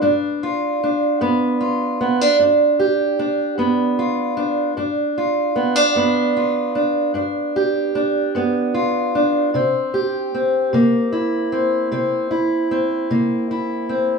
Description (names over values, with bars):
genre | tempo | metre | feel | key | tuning
blues | 50 BPM (dotted quarters) | 12/8 | straight | G mixolydian | A4 = 439 Hz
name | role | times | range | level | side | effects
fingerpicked steel-string acoustic guitar | solo | 0.0-14.2 s | G2 to G4 | -17 LUFS | right 1 dB | none
room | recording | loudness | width
moderate large studio reverb, RT60 1.2 s | band playing live in one room, small room ambience | -17 LUFS | side -4 dB against mid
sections
0.0-14.2 A section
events
none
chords
0.0 G7; 9.5 C7